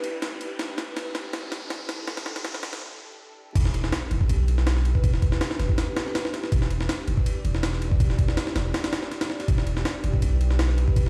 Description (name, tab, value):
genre	drum and bass, jungle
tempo	162 BPM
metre	4/4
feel	swing 53% on 16ths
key	E minor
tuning	A4 = 439 Hz
part	ethereal airy pad	sustained chords	0.0-11.1 s	D4 to D5	-38 LUFS	equal	ensemble chorus, built-in reverb
part	jungle sampler-style drum kit	drums	0.0-11.1 s	crash cymbal, kick drum, ride cymbal, snare drum	-28 LUFS	equal	none
part	riser and sub drop	sound effects	0.0-5.0 s	none	-38 LUFS	equal	none
part	long sustained 808-style bass	bass	3.6-11.1 s	E1 to B1	-26 LUFS	equal	tube saturation
room	light reverb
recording	played on a big sound system in a bare room, stone room reverb, vinyl crackle, high-pass filter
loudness	-25 LUFS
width	mono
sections	0.0-3.6 A section; 3.6-11.1 B section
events	build-up 0.0-3.6; drum fill 0.0-2.8; riser 0.0-2.8; break 2.8-3.6; drop 3.6-11.1; impact 3.6-5.0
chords	0.0 Em7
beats	0.22 | 0.59 0.96 1.33 1.70 | 2.07 2.44 2.81 3.19 | 3.56 3.93 4.30 4.67 | 5.04 5.41 5.78 6.15 | 6.52 6.89 7.26 7.63 | 8.00 8.37 8.74 9.11 | 9.48 9.85 10.22 10.59 | 10.96